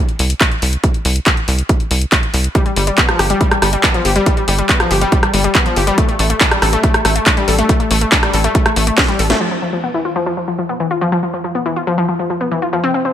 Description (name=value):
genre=uplifting trance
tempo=140 BPM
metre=4/4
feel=straight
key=unclear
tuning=A4 = 439 Hz
part: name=house drum kit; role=drums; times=0.1-9.5 s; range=crash cymbal, handclaps, hi-hat, rim click, snare drum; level=-16 LUFS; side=equal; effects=low-pass filter on hats, low-pass filter on snare, low-pass filter on cymbals, low-pass filter on room
part: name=tight sequencer bass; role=bass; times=0.2-9.3 s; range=G1 to C2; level=-16 LUFS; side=equal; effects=sidechain pumping
part: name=electronic kick drum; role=drums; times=0.4-9.1 s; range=none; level=-15 LUFS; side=equal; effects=none
part: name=wide unison pluck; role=arpeggios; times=2.5-13.1 s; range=E3 to A4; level=-16 LUFS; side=left 2 dB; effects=sidechain pumping, dub echo
room=light reverb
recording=none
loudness=-12 LUFS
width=side -10 dB against mid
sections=0.0-9.4 A section; 9.4-13.1 B section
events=drum fill 9.0-9.4; band accent 9.3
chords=0.0 N.C.; 2.5 G7(no3); 6.0 A7(no3); 9.4 E5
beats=0.41 | 0.84 1.26 1.69 2.12 | 2.55 2.98 3.41 3.84 | 4.26 4.69 5.12 5.55 | 5.98 6.41 6.84 7.26 | 7.69 8.12 8.55 8.98 | 9.41 9.84 10.26 10.69 | 11.12 11.55 11.98 12.41 | 12.84